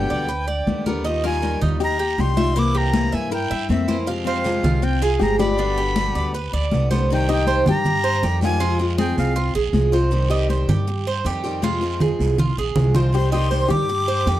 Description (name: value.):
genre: latin, Cuban son and guajira.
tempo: 159 BPM.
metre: 4/4.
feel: straight.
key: C minor.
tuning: A4 = 440 Hz.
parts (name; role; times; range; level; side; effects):
breathy bright jazz flute; melody; 0.0-9.5, 13.1-14.4 s; E5 to D6; -25 LUFS; equal; none.
nylon-string guitar; second line; 0.0-9.5, 13.1-14.4 s; C4 to Bb4; -27 LUFS; left 10 dB; none.
picked steel-string acoustic guitar; accompaniment; 0.0-14.4 s; B2 to G4; -26 LUFS; left 3 dB; none.
Cuban tres; arpeggios; 0.0-14.4 s; D4 to F5; -25 LUFS; right 5 dB; none.
upright bass; bass; 0.0-14.4 s; G1 to G2; -22 LUFS; equal; none.
congas; percussion; 0.1-14.4 s; none; -25 LUFS; equal; none.
guiro; percussion; 1.0-14.4 s; none; -38 LUFS; right 10 dB; none.
room: little or no reverb.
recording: dry, close 1970s-style studio recording.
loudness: -18 LUFS.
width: side -13 dB against mid.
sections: 0.0-7.1 A section; 7.1-14.4 B section.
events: drum fill 11.6-13.1.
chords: 0.0 G; 1.1 Ebadd9; 2.6 C7; 4.1 Fmadd9; 5.6 G; 7.1 Cm; 8.6 Fm; 10.1 Cm; 11.6 Fm; 13.1 Cm.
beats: 0.29 0.67 | 1.05 1.43 1.81 2.19 | 2.56 2.94 3.32 3.70 | 4.08 4.46 4.83 5.21 | 5.59 5.97 6.34 6.72 | 7.10 7.48 7.86 8.23 | 8.61 8.99 9.37 9.74 | 10.12 10.50 10.87 11.25 | 11.63 12.01 12.38 12.76 | 13.14 13.52 13.89 14.27.